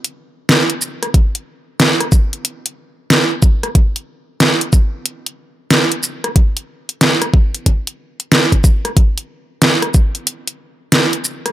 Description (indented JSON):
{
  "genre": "glitch hop",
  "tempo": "92 BPM",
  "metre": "4/4",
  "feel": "swing 64% on 16ths",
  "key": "none",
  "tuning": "none",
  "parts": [
    { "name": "pop drum kit", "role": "drums", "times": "0.0-11.5 s", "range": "hi-hat, rim click, shaker, snare drum", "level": "-13 LUFS", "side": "right 1 dB", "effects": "overdrive" },
    { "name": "electronic kick drum", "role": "drums", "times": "1.1-10.1 s", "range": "none", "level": "-11 LUFS", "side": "equal", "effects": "overdrive" }
  ],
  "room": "little or no reverb",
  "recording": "none",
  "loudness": "-13 LUFS",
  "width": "side -14 dB against mid",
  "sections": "0.0-11.5 A section",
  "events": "none",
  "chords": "none"
}